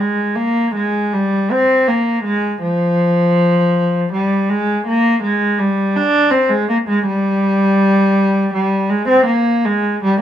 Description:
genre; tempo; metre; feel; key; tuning
classical, baroque-style suite movement for unaccompanied cello; 81 BPM; 3/4; rubato; unclear; A4 = 439 Hz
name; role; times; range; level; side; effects
warm cello; solo; 0.0-10.2 s; F3 to D4; -13 LUFS; equal; none
room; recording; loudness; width
light reverb; minimal, uncompressed stereo recording; -13 LUFS; side -10 dB against mid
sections
0.0-10.2 A section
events
none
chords
none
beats
0.36 1.12 | 1.88 2.61 3.35 | 4.11 4.85 5.59 | 6.32 7.07 7.82 | 8.55 9.30 10.04

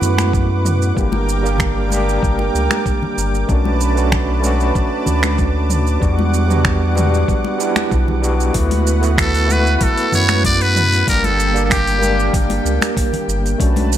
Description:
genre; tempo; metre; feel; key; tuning
sunset chillout; 95 BPM; 4/4; straight; unclear; A4 = 443 Hz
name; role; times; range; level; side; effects
overdriven tine electric piano; accompaniment; 0.0-14.0 s; G3 to G4; -21 LUFS; moving between left 2 dB and right 5 dB; fast tremolo, auto-pan, tape echo
lush unison pad; sustained chords; 0.0-14.0 s; G3 to D6; -24 LUFS; right 1 dB; chorus
warm sub bass; bass; 0.0-14.0 s; G1 to F#2; -17 LUFS; equal; none
deep house drum kit; drums; 0.0-14.0 s; finger snaps, hi-hat, shaker, toms; -23 LUFS; right 2 dB; overdrive
congas; percussion; 0.0-13.9 s; none; -26 LUFS; left 4 dB; none
electronic kick drum; drums; 0.3-13.7 s; none; -20 LUFS; equal; none
trumpet with metal mute; melody; 9.2-12.3 s; G4 to D5; -18 LUFS; equal; digital delay
room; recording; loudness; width
light reverb, digital ambience; none; -14 LUFS; side -11 dB against mid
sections
0.0-8.5 A section; 8.5-14.0 B section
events
none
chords
0.0 D6; 1.0 Gm; 3.5 Bm7; 6.0 Em9; 8.5 D6; 11.1 Gm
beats
0.34 | 0.97 1.60 2.23 2.86 | 3.49 4.13 4.76 5.39 | 6.02 6.65 7.28 7.92 | 8.55 9.18 9.81 10.44 | 11.07 11.70 12.34 12.97 | 13.60

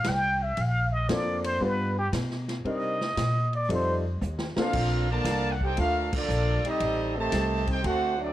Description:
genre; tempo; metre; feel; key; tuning
jazz, big band swing; 116 BPM; 4/4; swing 69% on 8ths; Bb major; A4 = 443 Hz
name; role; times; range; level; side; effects
trumpet with plunger mute; melody; 0.0-3.9 s; G4 to G5; -28 LUFS; equal; none
upright bass; bass; 0.0-8.3 s; A1 to C3; -29 LUFS; equal; none
swinging big-band drum kit; drums; 0.0-8.0 s; crash cymbal, hi-hat, kick drum, ride cymbal, snare drum; -35 LUFS; equal; none
clear baby grand piano; accompaniment; 1.1-4.7 s; G3 to B4; -31 LUFS; left 2 dB; none
clear trumpet section; melody; 4.6-8.3 s; Bb3 to A5; -29 LUFS; right 1 dB; none
bright trombone section; second line; 4.6-8.3 s; C3 to A4; -30 LUFS; right 2 dB; none
room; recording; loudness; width
light reverb; worn, warbling old tape, cassette tape, warbly pitch drift; -24 LUFS; side -13 dB against mid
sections
0.0-4.7 A section; 4.7-8.3 B section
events
muted trumpet solo 0.0-4.7; drum fill 4.2-4.7; band accent 6.0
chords
0.0 Fsus2 (rootless); 0.6 Bbmaj7; 1.6 G7; 2.7 Cm7; 3.7 F7; 4.7 Bbmaj7; 6.8 Am7b5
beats
0.06 | 0.58 1.10 1.62 2.14 | 2.66 3.18 3.69 4.21 | 4.73 5.25 5.77 6.29 | 6.81 7.33 7.85

